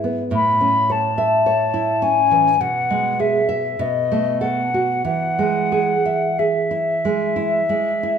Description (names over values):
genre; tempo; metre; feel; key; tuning
romantic duo for flute and classical guitar; 45-54 BPM; 4/4; rubato; E major; A4 = 441 Hz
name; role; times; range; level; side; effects
nylon-string guitar; accompaniment; 0.0-8.2 s; G#2 to E5; -20 LUFS; right 2 dB; none
silver concert flute; melody; 0.3-8.2 s; D#5 to B5; -19 LUFS; left 3 dB; none
room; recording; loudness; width
moderate recital hall reverb, RT60 1.8 s; minimal, uncompressed stereo recording; -16 LUFS; side -7 dB against mid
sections
0.0-8.2 A section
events
none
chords
0.3 A; 2.6 E/B; 3.8 B7; 5.1 E